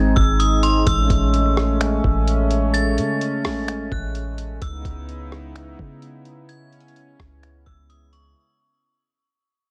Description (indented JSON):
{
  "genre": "hip hop, atmospheric cloud-rap",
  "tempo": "128 BPM",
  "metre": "4/4",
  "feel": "half-time",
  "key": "C# minor",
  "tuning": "A4 = 443 Hz",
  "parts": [
    { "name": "metallic FM bell", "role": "melody", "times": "0.0-8.4 s", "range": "B#5 to A6", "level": "-28 LUFS", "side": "equal", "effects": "chorus, tape echo" },
    { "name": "warm analog pad", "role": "sustained chords", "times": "0.0-8.3 s", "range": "C#3 to E4", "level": "-26 LUFS", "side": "equal", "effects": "chorus, sidechain pumping" },
    { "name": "soft 808-style bass", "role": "bass", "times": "0.0-8.3 s", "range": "G#1 to C#3", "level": "-25 LUFS", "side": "equal", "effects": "none" },
    { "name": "lo-fi sampler-style drum kit", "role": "drums", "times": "0.2-8.2 s", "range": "finger snaps, hi-hat, kick drum, rim click", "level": "-26 LUFS", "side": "equal", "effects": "none" }
  ],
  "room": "little or no reverb",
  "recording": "echo-heavy mix",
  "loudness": "-20 LUFS",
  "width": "mono",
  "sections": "0.0-8.4 A section",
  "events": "fade-out 0.0-8.4",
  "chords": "0.0 G#; 0.9 Amaj7; 4.6 C#m7"
}